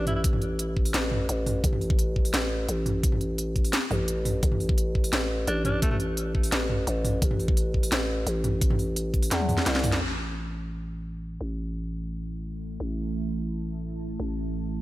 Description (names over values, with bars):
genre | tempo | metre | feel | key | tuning
half-time drum and bass | 172 BPM | 4/4 | half-time | unclear | A4 = 441 Hz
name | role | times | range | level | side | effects
breathy alto saxophone | melody | 0.0-0.2, 5.5-6.0 s | A3 to E4 | -34 LUFS | equal | digital delay
growling 808-style bass | bass | 0.0-14.8 s | A1 to E2 | -28 LUFS | equal | none
drum and bass drum kit | drums | 0.1-10.0 s | hi-hat, snare drum, toms | -28 LUFS | equal | low-pass filter on hats, low-pass filter on snare, low-pass filter on toms, low-pass filter on room
electronic kick drum | drums | 0.2-9.2 s | none | -24 LUFS | equal | none
deep dark ambient pad | sustained chords | 12.0-14.8 s | A3 to A5 | -35 LUFS | right 3 dB | chorus, built-in reverb, sidechain pumping
room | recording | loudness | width
little or no reverb | none | -24 LUFS | side -17 dB against mid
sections
0.0-10.0 A section; 10.0-14.8 B section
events
drum fill 9.3-10.0; band accent 9.9; filter sweep on ambient pad 10.0-14.8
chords
0.0 A5